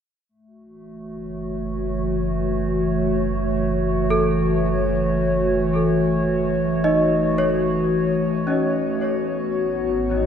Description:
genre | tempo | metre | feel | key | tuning
ambient | free time | none | none | F# dorian | A4 = 440 Hz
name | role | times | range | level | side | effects
warbly tape-like pad | sustained chords | 1.0-10.3 s | E3 to C#5 | -20 LUFS | equal | chorus, built-in reverb, shimmer reverb
deep rumbling drone | bass | 1.3-10.3 s | F#1 to G#1 | -29 LUFS | right 1 dB | built-in reverb
worn celesta | arpeggios | 4.1-10.3 s | C#4 to D#5 | -24 LUFS | equal | diffuse ambient delay, shimmer reverb
room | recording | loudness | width
wet concert hall reverb, RT60 2.3 s | none | -19 LUFS | side -8 dB against mid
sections
0.3-10.3 A section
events
none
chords
0.3 F#m7; 9.0 G#m7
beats
free time

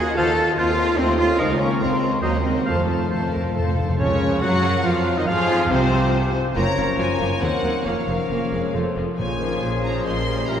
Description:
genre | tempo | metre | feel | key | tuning
classical | 134-148 BPM | 3/4 | rubato | Bb minor | A4 = 439 Hz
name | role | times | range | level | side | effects
warm symphonic violin section | melody | 0.0-10.6 s | C5 to C6 | -30 LUFS | left 3 dB | none
mellow concert flute | second line | 0.0-10.6 s | F4 to A6 | -30 LUFS | left 2 dB | none
warm symphonic violin section | second line | 0.0-10.6 s | C4 to Eb5 | -32 LUFS | left 2 dB | none
rich symphonic viola section | accompaniment | 0.0-10.6 s | C3 to C5 | -30 LUFS | right 1 dB | none
mellow French horn section | sustained chords | 0.0-10.6 s | C3 to F4 | -29 LUFS | left 2 dB | none
concert harp | arpeggios | 0.0-10.6 s | Gb2 to F5 | -29 LUFS | left 5 dB | none
rich symphonic cello section | bass | 0.0-10.6 s | Eb2 to A4 | -25 LUFS | right 2 dB | none
rich symphonic double bass section | bass | 0.0-10.6 s | F1 to Gb2 | -26 LUFS | right 2 dB | none
bright clarinet | second line | 0.2-10.6 s | C4 to C5 | -30 LUFS | left 1 dB | none
mellow cor anglais | second line | 0.2-10.6 s | Bb4 to Gb5 | -30 LUFS | right 1 dB | none
dark bassoon | accompaniment | 0.2-10.6 s | C3 to Ab3 | -30 LUFS | right 1 dB | none
timpani | percussion | 2.7-4.6, 9.2-9.8 s | F2 to Bb2 | -29 LUFS | left 1 dB | none
room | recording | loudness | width
wet church reverb, RT60 3.6 s | none | -18 LUFS | side -8 dB against mid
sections
0.0-4.0 A section; 4.0-10.6 B section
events
timpani fill 2.7-4.0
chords
0.2 F7/Eb; 1.4 Bbm/Db; 2.2 Cm7b5/Eb; 2.7 F; 4.0 Bbm/Db; 5.3 Fm; 6.6 Gbmaj7; 7.4 Cm7b5/Eb; 7.9 Bbm/F; 8.7 F; 9.2 Bbm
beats
| 0.17 0.58 0.98 | 1.40 1.81 2.23 | 2.66 3.11 3.54 | 3.98 4.41 4.84 | 5.28 5.71 6.14 | 6.57 6.99 7.42 | 7.85 8.30 8.75 | 9.19 9.62 10.05 | 10.48

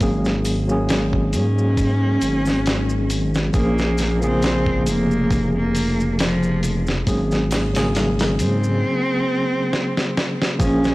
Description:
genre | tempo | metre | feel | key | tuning
trip hop | 68 BPM | 4/4 | swing 55% on 16ths | unclear | A4 = 438 Hz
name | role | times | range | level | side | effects
tine electric piano | accompaniment | 0.0-10.9 s | Db3 to Ab4 | -22 LUFS | equal | tremolo
dark detuned saw bass | bass | 0.0-10.9 s | F1 to Ab2 | -22 LUFS | equal | tube saturation
dusty soul sampler-style drum kit | drums | 0.0-10.9 s | hi-hat, kick drum, snare drum | -23 LUFS | equal | none
maracas and triangle | percussion | 0.0-10.9 s | none | -39 LUFS | right 1 dB | none
rich cello | melody | 1.3-10.9 s | F3 to Db4 | -23 LUFS | equal | tape echo
room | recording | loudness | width
light reverb, digital ambience | blown-out, overdriven recording, vinyl crackle, overdrive | -17 LUFS | side -19 dB against mid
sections
0.0-10.6 A section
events
drum fill 9.7-10.6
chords
0.0 Ab9sus4; 3.5 Bbm7; 7.1 Ab9sus4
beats
| 0.01 0.90 1.78 2.66 | 3.54 4.42 5.31 6.19 | 7.07 7.96 8.84 9.72 | 10.60

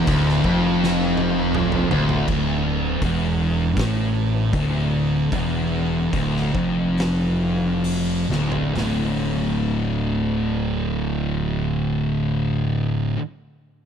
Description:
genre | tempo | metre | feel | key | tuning
stoner and doom metal | 64-82 BPM | 4/4 | straight | D minor | A4 = 440 Hz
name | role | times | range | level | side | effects
thick fuzz guitar | riff | 0.0-13.2 s | D2 to D3 | -24 LUFS | left 8 dB | distortion
thick fuzz guitar | riff | 0.0-13.2 s | D2 to D3 | -23 LUFS | right 8 dB | distortion
tight distorted guitar | riff | 0.0-2.3 s | D2 to F2 | -24 LUFS | equal | distortion
fuzz fingered electric bass | bass | 0.0-13.1 s | D1 to A1 | -27 LUFS | equal | overdrive, tube saturation
oversized low-tuned drum kit | drums | 0.1-9.0 s | crash cymbal, hi-hat, kick drum, snare drum, toms | -28 LUFS | equal | none
room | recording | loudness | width
studio reverb | none | -19 LUFS | side -8 dB against mid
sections
0.0-2.3 A section; 2.3-8.8 B section; 8.8-12.5 C section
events
drum fill 0.8-2.3, 8.3-8.8; slowing down 2.3-8.8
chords
0.0 Dm; 8.8 D5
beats
0.07 0.81 1.54 | 2.28 3.02 3.77 4.53 | 5.32 6.12 6.96 7.84 | 8.76 9.70 10.65 11.59

